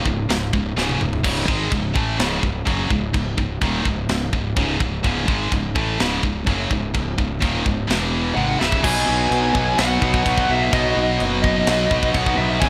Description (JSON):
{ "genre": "heavy metal", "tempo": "126 BPM", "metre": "4/4", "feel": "straight", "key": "unclear", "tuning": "A4 = 440 Hz", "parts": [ { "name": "heavy high-gain guitar", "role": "riff", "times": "0.0-12.7 s", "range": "C#2 to B3", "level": "-25 LUFS", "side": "equal", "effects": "distortion" }, { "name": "fuzz fingered electric bass", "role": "bass", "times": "0.0-12.7 s", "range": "C#1 to B1", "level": "-27 LUFS", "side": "equal", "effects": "overdrive" }, { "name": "tight metal drum kit", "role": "drums", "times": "0.1-12.7 s", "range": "china cymbal, crash cymbal, kick drum, snare drum, toms", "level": "-26 LUFS", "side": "equal", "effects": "none" }, { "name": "high-gain lead guitar", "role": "melody", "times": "8.3-12.7 s", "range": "D#5 to G#5", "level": "-24 LUFS", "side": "equal", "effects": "distortion, digital delay" }, { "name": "raw garage guitar", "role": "riff", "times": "8.8-12.7 s", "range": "C#2 to B4", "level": "-26 LUFS", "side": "equal", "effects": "overdrive" } ], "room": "light reverb", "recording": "none", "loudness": "-20 LUFS", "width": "mono", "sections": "0.0-8.8 A section; 8.8-12.7 B section", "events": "drum fill 0.8-1.2, 8.4-8.8", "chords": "0.0 C#5; 7.9 E5; 8.4 C#m; 8.8 B", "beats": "0.29 0.76 | 1.24 1.72 2.19 2.67 | 3.14 3.62 4.09 4.57 | 5.04 5.52 5.99 6.47 | 6.94 7.42 7.89 8.37 | 8.84 9.31 9.79 10.26 | 10.73 11.21 11.68 12.15 | 12.62" }